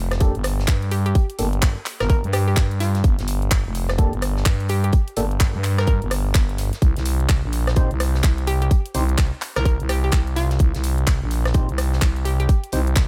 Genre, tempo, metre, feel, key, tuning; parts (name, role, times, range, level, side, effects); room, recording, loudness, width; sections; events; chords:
bass house; 127 BPM; 4/4; swing 61% on 16ths; G minor; A4 = 438 Hz
growling FM bass; bass; 0.0-13.1 s; F1 to G2; -24 LUFS; equal; overdrive, sidechain pumping
garage drum kit; drums; 0.1-13.1 s; handclaps, hi-hat, rim click; -30 LUFS; equal
tight metal drum kit; drums; 0.1-13.1 s; hi-hat, snare drum; -41 LUFS; equal
percussive organ stab; stabs; 0.2-12.8 s; Bb3 to C5; -32 LUFS; equal; subtle chorus, sidechain pumping, dub echo
electronic kick drum; drums; 0.2-13.1 s; -20 LUFS; equal
hollow square pluck; melody; 0.9-12.5 s; F4 to Bb4; -31 LUFS; equal; chorus, dub echo
little or no reverb; -20 LUFS; mono
0.0-13.1 A section
0.0 Gmadd9; 6.8 Cm